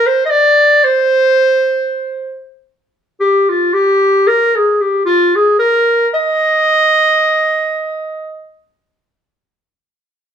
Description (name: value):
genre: balkan folk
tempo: free time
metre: none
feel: none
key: Eb major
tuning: A4 = 441 Hz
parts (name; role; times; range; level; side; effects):
- mellow clarinet; solo; 0.0-8.5 s; F4 to Eb5; -10 LUFS; equal; none
room: moderate studio reverb, RT60 0.8 s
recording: band playing live in one room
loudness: -10 LUFS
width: side -8 dB against mid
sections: 0.0-9.0 A section; 9.0-10.3 B section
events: none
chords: none